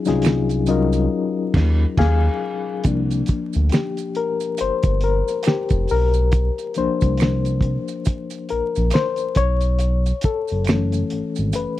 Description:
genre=R&B, neo-soul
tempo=69 BPM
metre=4/4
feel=swing 59% on 16ths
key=unclear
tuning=A4 = 440 Hz
part: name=mellow reed electric piano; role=accompaniment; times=0.0-11.8 s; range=E3 to Ab5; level=-22 LUFS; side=left 5 dB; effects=fast tremolo
part: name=smooth synth bass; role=bass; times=0.1-11.7 s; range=F1 to Eb2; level=-20 LUFS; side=equal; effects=none
part: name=cloth-damped thuddy drum kit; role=drums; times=0.1-11.8 s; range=crash cymbal, finger snaps, hi-hat, kick drum, snare drum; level=-20 LUFS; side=right 1 dB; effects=none
part: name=maracas and finger snaps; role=percussion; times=0.1-11.8 s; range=none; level=-35 LUFS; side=right 18 dB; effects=none
room=little or no reverb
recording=dry, close 1970s-style studio recording, vinyl crackle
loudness=-18 LUFS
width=side -14 dB against mid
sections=0.0-2.8 A section; 2.8-11.8 B section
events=break 0.0-2.8; band accent 1.1-2.8; reed electric piano solo 2.8-11.8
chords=0.0 Ebm11; 2.8 C9sus4; 9.4 B9sus4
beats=0.23 1.10 1.97 | 2.84 3.71 4.58 5.45 | 6.32 7.19 8.06 8.93 | 9.80 10.67 11.54

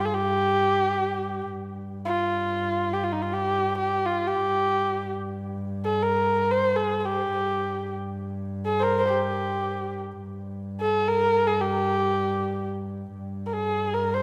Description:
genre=Persian modal ensemble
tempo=free time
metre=none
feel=none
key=G dastgah shur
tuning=A4 = 440 Hz
part: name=dark kamancheh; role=melody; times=0.0-14.2 s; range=Eb4 to C5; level=-26 LUFS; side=equal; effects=none
part: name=rich double bass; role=drone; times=0.0-14.2 s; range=G2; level=-34 LUFS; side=equal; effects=none
room=wet concert hall reverb, RT60 2.3 s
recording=none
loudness=-26 LUFS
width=mono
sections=0.0-13.1 A section; 13.1-14.2 A section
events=none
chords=none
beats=free time

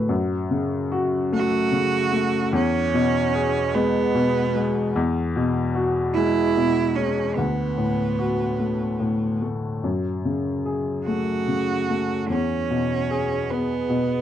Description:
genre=neoclassical piano and strings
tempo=50 BPM (dotted quarters)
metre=6/8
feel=rubato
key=F# minor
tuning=A4 = 441 Hz
part: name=warm upright piano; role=accompaniment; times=0.0-14.2 s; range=D2 to B4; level=-22 LUFS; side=left 2 dB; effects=none
part: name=rich cello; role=second line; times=1.3-14.2 s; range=B3 to F#4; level=-24 LUFS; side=right 8 dB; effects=slapback echo
room=light reverb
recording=dry, close 1970s-style studio recording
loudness=-20 LUFS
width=side -10 dB against mid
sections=0.1-14.2 A section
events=none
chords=0.1 F#m; 2.5 C#m7/E; 4.9 Eadd9; 7.4 Bm7/D; 9.8 F#madd9; 12.3 C#m7/E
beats=| 0.10 1.33 | 2.54 3.74 | 4.94 6.15 | 7.37 8.59 | 9.83 11.07 | 12.29 13.50

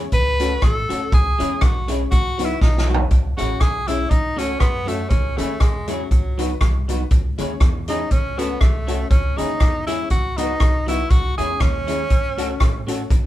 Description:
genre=ska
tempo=120 BPM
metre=4/4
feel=swing 55% on 8ths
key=C# minor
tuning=A4 = 438 Hz
part: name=electric guitar at the edge of break-up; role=accompaniment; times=0.0-13.0 s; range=F#3 to A4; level=-29 LUFS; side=right 2 dB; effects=none
part: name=honky-tonk upright piano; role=stabs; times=0.0-13.0 s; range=B3 to C#5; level=-29 LUFS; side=left 5 dB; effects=none
part: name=upright bass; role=bass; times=0.0-13.3 s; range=A1 to F#2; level=-25 LUFS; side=equal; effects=none
part: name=bright tenor saxophone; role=melody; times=0.1-12.9 s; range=F#3 to B4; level=-24 LUFS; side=equal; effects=none
part: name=vintage drum kit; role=drums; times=0.1-13.2 s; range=hi-hat, kick drum, rim click, snare drum, toms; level=-18 LUFS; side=equal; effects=none
room=light reverb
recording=band playing live in one room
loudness=-17 LUFS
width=side -14 dB against mid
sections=0.0-3.1 A section; 3.1-13.3 A section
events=tenor saxophone solo 0.0-3.1, 3.1-13.3; drum fill 2.6-3.1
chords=0.1 F#m/C#; 1.1 C#m; 2.1 B/C#; 3.1 C#m; 4.1 F#m/C#; 5.1 C#m; 6.1 B/C#; 7.1 C#m; 8.1 F#m/C#; 9.1 C#m; 10.1 B/C#; 11.1 C#m; 12.1 F#m/C#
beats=0.12 0.62 | 1.12 1.62 2.12 2.62 | 3.12 3.62 4.11 4.61 | 5.11 5.61 6.11 6.61 | 7.11 7.61 8.11 8.61 | 9.11 9.61 10.11 10.61 | 11.11 11.61 12.11 12.61 | 13.11

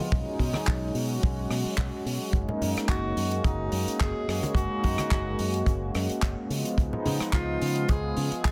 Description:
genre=nu-disco, nu disco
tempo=108 BPM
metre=4/4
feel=swing 53% on 16ths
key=F# major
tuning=A4 = 445 Hz
part: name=warm analog pad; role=accompaniment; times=0.0-8.5 s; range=E#3 to F#4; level=-33 LUFS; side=equal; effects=chorus, sidechain pumping, dub echo
part: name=fingered electric bass with an envelope filter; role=bass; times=0.1-8.5 s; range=F#1 to C#3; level=-33 LUFS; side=equal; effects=none
part: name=kick drum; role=drums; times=0.1-8.5 s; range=none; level=-29 LUFS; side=equal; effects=none
part: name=natural country drum kit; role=drums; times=0.4-8.5 s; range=handclaps, hi-hat, rim click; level=-37 LUFS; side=equal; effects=none
part: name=congas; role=percussion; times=0.5-7.2 s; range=none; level=-35 LUFS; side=equal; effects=none
part: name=warm tenor saxophone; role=melody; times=2.9-8.5 s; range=D#4 to G#4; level=-36 LUFS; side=equal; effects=dub echo
room=light reverb, small room ambience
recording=none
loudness=-28 LUFS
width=mono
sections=0.0-8.5 A section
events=none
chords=0.1 B6; 2.3 F#69; 6.5 C#7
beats=| 0.11 0.67 1.23 1.78 | 2.34 2.89 3.45 4.00 | 4.56 5.11 5.67 6.22 | 6.78 7.34 7.89 8.45

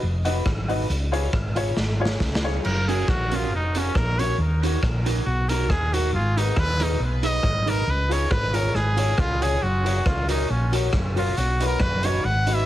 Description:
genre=ska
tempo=138 BPM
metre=4/4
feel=swing 53% on 8ths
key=F# major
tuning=A4 = 442 Hz
part: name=hollow-body short-scale fingered electric bass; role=bass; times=0.0-12.6 s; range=E#1 to D#2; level=-24 LUFS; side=equal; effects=none
part: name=clear upright piano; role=stabs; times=0.2-2.6 s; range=E#4 to D#5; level=-31 LUFS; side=left 3 dB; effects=none
part: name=electric guitar through a small old amp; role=accompaniment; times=0.3-12.6 s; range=C#4 to C#5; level=-29 LUFS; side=equal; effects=wide subtle chorus, dub echo
part: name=raw garage drum kit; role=drums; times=0.3-12.6 s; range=crash cymbal, hi-hat, kick drum, rim click, snare drum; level=-27 LUFS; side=equal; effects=none
part: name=bright trumpet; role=melody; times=2.6-12.7 s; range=C#4 to F#5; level=-26 LUFS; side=equal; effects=dub echo
room=little or no reverb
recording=heavily compressed radio sound, multiband compression, lossy compression artefacts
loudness=-20 LUFS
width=side -13 dB against mid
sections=0.0-2.6 A section; 2.6-12.7 B section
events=drum fill 1.8-2.6; trumpet solo 2.6-12.7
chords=0.0 B; 0.9 C#; 2.6 F#; 4.4 D#m; 6.1 G#m; 7.9 C#; 9.6 F#; 11.4 B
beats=0.02 0.46 | 0.90 1.33 1.77 2.21 | 2.64 3.08 3.51 3.95 | 4.39 4.82 5.26 5.70 | 6.13 6.57 7.01 7.44 | 7.88 8.32 8.75 9.19 | 9.62 10.06 10.50 10.93 | 11.37 11.81 12.24

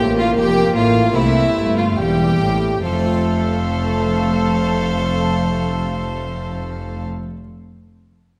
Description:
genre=classical, baroque-style concerto movement with solo episodes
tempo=69-79 BPM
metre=4/4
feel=straight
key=F major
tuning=A4 = 439 Hz
part: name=clear studio violin section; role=melody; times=0.0-7.1 s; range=E5 to G5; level=-32 LUFS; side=equal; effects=none
part: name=clear violin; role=melody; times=0.0-7.1 s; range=E4 to C5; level=-25 LUFS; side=equal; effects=none
part: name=rich chamber violin section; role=second line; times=0.0-7.1 s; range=E4 to A4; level=-28 LUFS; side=equal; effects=none
part: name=harpsichord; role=accompaniment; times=0.0-7.4 s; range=E2 to C5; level=-28 LUFS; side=equal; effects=none
part: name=rich chamber viola section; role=accompaniment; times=0.0-7.1 s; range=G3 to Bb3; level=-24 LUFS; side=equal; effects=none
part: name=rich chamber double bass section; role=bass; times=0.0-7.1 s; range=E1 to C2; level=-28 LUFS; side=equal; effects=none
part: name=warm chamber cello section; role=bass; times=0.0-7.1 s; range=E2 to C3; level=-24 LUFS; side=equal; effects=none
room=wet scoring stage reverb, RT60 1.7 s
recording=dark, warm production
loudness=-18 LUFS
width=mono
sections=0.0-2.8 A section; 2.8-6.3 B section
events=slowing down 0.0-2.8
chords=0.0 C7sus4; 1.2 C7; 2.8 F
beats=0.37 1.16 1.98 | 2.85 3.71 4.58 5.44

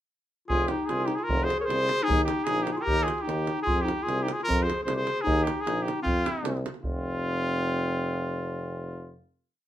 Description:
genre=balkan folk, Balkan brass band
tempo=151 BPM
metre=2/4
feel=straight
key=F minor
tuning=A4 = 441 Hz
part: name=clear trumpet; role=melody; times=0.5-9.2 s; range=F4 to Db5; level=-28 LUFS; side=equal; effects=none
part: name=mellow clarinet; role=second line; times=0.5-9.2 s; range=C4 to Bb4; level=-32 LUFS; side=left 3 dB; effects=none
part: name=clear tuba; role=bass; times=0.5-9.2 s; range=F1 to F2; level=-31 LUFS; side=equal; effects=none
part: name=davul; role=percussion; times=0.5-7.0 s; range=none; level=-32 LUFS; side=right 1 dB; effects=none
room=moderate studio reverb, RT60 0.6 s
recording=minimal, uncompressed stereo recording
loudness=-25 LUFS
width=side -12 dB against mid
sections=0.5-6.8 A section; 6.8-8.4 final chord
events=none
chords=0.5 Fm; 2.1 Eb; 3.7 F5; 5.3 Eb5; 6.0 F5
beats=| 0.49 0.89 | 1.29 1.69 | 2.08 2.48 | 2.88 3.28 | 3.68 4.07 | 4.47 4.87 | 5.26 5.66 | 6.05 6.44 | 6.84 7.23 | 7.62 8.01

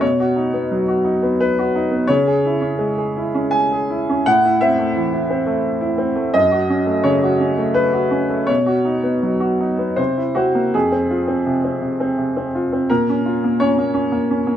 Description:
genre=neoclassical minimalist piano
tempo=85 BPM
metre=3/4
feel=rubato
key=unclear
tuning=A4 = 445 Hz
part: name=clear baby grand piano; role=solo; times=0.0-14.6 s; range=F2 to G#5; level=-16 LUFS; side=equal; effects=none
room=moderate studio reverb, RT60 0.6 s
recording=minimal, uncompressed stereo recording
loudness=-16 LUFS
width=side -10 dB against mid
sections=0.0-10.7 A section; 10.7-14.6 B section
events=none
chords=0.0 B; 2.1 C#m; 4.2 Am; 6.3 F#m; 8.5 B; 10.0 C7; 10.7 Fm; 12.9 A#m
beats=| 0.01 0.71 1.39 | 2.08 2.78 3.53 | 4.25 4.94 5.64 | 6.33 7.05 7.77 | 8.49 9.23 9.98 | 10.74 11.46 12.18 | 12.89 13.59 14.28

